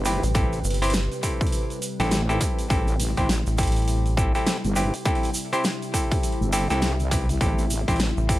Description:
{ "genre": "glitch hop", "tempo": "102 BPM", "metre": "4/4", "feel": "swing 60% on 16ths", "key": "A minor", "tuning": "A4 = 440 Hz", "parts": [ { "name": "warbly tape-like pad", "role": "sustained chords", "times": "0.0-8.4 s", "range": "C3 to B4", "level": "-33 LUFS", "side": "left 2 dB", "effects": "chorus, built-in reverb, vintage 12-bit sampler grit, sidechain pumping" }, { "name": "wobble bass", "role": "bass", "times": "0.0-8.1 s", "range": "G1 to C2", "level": "-24 LUFS", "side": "equal", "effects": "chorus" }, { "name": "overdriven clav", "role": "stabs", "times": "0.1-8.4 s", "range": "C4 to C5", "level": "-27 LUFS", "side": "equal", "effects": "sidechain pumping, tape echo" }, { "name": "dubstep drum kit", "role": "drums", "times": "0.1-8.4 s", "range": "hi-hat, snare drum", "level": "-30 LUFS", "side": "equal", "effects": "none" }, { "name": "egg shaker", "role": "percussion", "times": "0.1-8.4 s", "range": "none", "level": "-35 LUFS", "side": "right 3 dB", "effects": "none" }, { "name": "rubbery square bass", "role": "bass", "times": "0.2-4.3, 8.2-8.4 s", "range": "G1 to A1", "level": "-23 LUFS", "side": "equal", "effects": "tube saturation" }, { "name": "electronic kick drum", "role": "drums", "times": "0.3-8.4 s", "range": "none", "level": "-24 LUFS", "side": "equal", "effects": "none" } ], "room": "little or no reverb", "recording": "vinyl crackle", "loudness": "-21 LUFS", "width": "side -16 dB against mid", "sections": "0.0-8.4 A section", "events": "none", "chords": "0.0 Am7" }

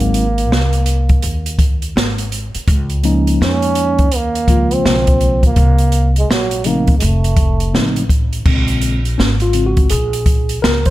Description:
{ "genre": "hip hop, jazz-hop", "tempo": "83 BPM", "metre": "4/4", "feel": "swing 63% on 16ths", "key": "Bb minor", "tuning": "A4 = 443 Hz", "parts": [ { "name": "trombone with bucket mute", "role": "melody", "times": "0.0-8.1 s", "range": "Gb3 to Db4", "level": "-19 LUFS", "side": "right 3 dB", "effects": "none" }, { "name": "mellow tine electric piano", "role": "accompaniment", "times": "0.0-10.9 s", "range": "Db3 to C5", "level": "-19 LUFS", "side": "left 2 dB", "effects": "medium stereo tremolo" }, { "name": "upright bass", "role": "bass", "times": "0.0-10.9 s", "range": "F1 to F2", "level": "-17 LUFS", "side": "equal", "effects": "none" }, { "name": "open jazz drum kit", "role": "drums", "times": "0.0-10.9 s", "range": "crash cymbal, hi-hat, kick drum, snare drum", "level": "-15 LUFS", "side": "equal", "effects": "none" } ], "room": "studio reverb", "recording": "none", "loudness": "-12 LUFS", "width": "side -16 dB against mid", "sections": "0.0-8.5 A section; 8.5-10.9 B section", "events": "tine electric piano solo 8.5-10.9", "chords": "0.0 Abadd9; 2.7 Db69; 5.6 Bbmadd9; 7.0 F7b13; 8.5 Bbm9" }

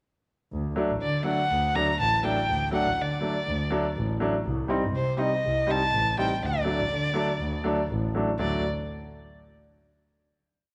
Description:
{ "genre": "klezmer", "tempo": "122 BPM", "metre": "4/4", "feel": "straight", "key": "unclear", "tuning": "A4 = 441 Hz", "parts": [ { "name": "warm double bass", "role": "bass", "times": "0.5-8.6 s", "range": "A1 to D3", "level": "-32 LUFS", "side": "equal", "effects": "none" }, { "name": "clear upright piano", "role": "accompaniment", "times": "0.8-8.6 s", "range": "F#3 to Eb4", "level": "-31 LUFS", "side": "equal", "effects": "none" }, { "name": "dark violin", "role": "melody", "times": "1.0-8.6 s", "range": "C5 to Bb5", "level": "-30 LUFS", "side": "equal", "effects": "none" } ], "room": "wet echo chamber reverb, RT60 1.9 s", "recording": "none", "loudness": "-26 LUFS", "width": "mono", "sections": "0.5-8.4 A section; 8.4-10.4 final chord", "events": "none", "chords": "0.5 D; 4.5 Cm; 6.4 D" }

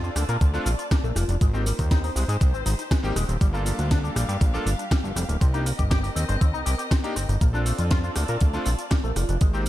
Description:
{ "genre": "nu-disco, nu disco", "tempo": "120 BPM", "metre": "4/4", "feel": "straight", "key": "Bb major", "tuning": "A4 = 440 Hz", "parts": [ { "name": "bright electric grand piano", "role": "accompaniment", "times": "0.0-9.6 s", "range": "A3 to A4", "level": "-33 LUFS", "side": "equal", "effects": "sidechain pumping, tape echo" }, { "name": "dark chamber string section", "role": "sustained chords", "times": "0.0-9.7 s", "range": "G3 to A5", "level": "-36 LUFS", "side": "left 1 dB", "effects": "sidechain pumping" }, { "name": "electric guitar with an envelope filter", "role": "riff", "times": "0.0-9.7 s", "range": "F3 to C5", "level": "-33 LUFS", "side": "left 4 dB", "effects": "wide subtle chorus, tape echo" }, { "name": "fat analog bass", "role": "bass", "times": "0.0-9.7 s", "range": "D1 to Bb2", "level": "-25 LUFS", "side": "equal", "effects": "tube saturation, sidechain pumping" }, { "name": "house drum kit", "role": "drums", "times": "0.0-9.7 s", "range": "cabasa, hi-hat, rim click, snare drum", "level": "-32 LUFS", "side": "equal", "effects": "studio ambience" }, { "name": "electronic kick drum", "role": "drums", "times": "0.4-9.5 s", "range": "none", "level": "-20 LUFS", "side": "equal", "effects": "studio ambience" }, { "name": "soft octave-layered synth lead", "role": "melody", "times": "1.0-2.7, 9.0-9.7 s", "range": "F4 to C5", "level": "-35 LUFS", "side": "equal", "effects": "chorus, phaser, tape echo" } ], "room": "digital ambience", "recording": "echo-heavy mix", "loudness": "-21 LUFS", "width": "side -14 dB against mid", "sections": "0.0-9.7 A section", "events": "none", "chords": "0.0 Bbmaj7; 1.4 Abmaj7; 3.4 Gm7; 5.4 Cm7; 7.4 Bbmaj7" }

